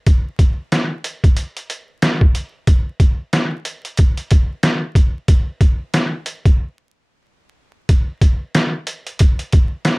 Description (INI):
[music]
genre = hip hop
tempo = 92 BPM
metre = 4/4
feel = swing 60% on 16ths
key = none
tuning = none
[part]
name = trip hop sampler-style drum kit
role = drums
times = 0.1-10.0 s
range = hi-hat, kick drum, snare drum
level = -13 LUFS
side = equal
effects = none
[sound]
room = light reverb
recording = vinyl crackle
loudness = -15 LUFS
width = side -28 dB against mid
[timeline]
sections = 0.0-7.9 A section; 7.9-10.0 B section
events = break 6.6-7.9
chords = none